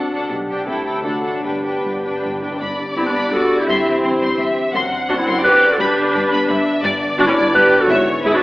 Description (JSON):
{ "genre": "classical, dramatic, fast romantic movement for symphony orchestra", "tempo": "169 BPM", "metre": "3/4", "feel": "rubato", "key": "G major", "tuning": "A4 = 440 Hz", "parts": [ { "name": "rich symphonic violin section", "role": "melody", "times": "0.0-8.3 s", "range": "D5 to C6", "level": "-25 LUFS", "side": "left 1 dB", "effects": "none" }, { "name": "warm symphonic violin section", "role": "second line", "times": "0.0-8.4 s", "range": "G4 to F#5", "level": "-22 LUFS", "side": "left 1 dB", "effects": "none" }, { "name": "rich symphonic viola section", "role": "accompaniment", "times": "0.0-8.4 s", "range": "B3 to G4", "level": "-21 LUFS", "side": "right 1 dB", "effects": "none" }, { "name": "mellow French horn section", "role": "sustained chords", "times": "0.0-8.4 s", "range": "A3 to G4", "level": "-24 LUFS", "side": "equal", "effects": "none" }, { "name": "concert harp", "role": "arpeggios", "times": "0.0-8.4 s", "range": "F#2 to E5", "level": "-28 LUFS", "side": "left 2 dB", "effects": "none" }, { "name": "rich symphonic cello section", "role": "bass", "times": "0.0-8.3 s", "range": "F#2 to D3", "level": "-30 LUFS", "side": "right 1 dB", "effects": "none" }, { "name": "rich symphonic double bass section", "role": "bass", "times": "0.0-8.3 s", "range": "F#1 to D2", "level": "-34 LUFS", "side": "right 1 dB", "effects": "none" }, { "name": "timpani", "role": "percussion", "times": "1.4-2.6 s", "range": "G2", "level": "-35 LUFS", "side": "equal", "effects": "none" }, { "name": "mellow clarinet", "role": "second line", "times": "3.0-8.4 s", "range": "D4 to B4", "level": "-17 LUFS", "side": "equal", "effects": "none" } ], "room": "wet scoring stage reverb, RT60 1.4 s", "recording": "AM radio sound", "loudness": "-15 LUFS", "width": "side -19 dB against mid", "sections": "0.0-2.6 A section; 2.6-8.4 B section", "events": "timpani fill 1.4-2.6", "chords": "0.3 G/B; 0.7 Am7/C; 1.1 D; 1.4 G; 3.7 C/G; 4.7 D7/F#; 5.8 G; 6.8 Em7/G; 7.9 E7/G#", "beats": "| 0.31 0.68 1.05 | 1.44 1.83 2.22 | 2.61 2.97 3.32 | 3.68 4.03 4.39 | 4.74 5.09 5.44 | 5.79 6.14 6.49 | 6.84 7.19 7.54 | 7.90 8.26" }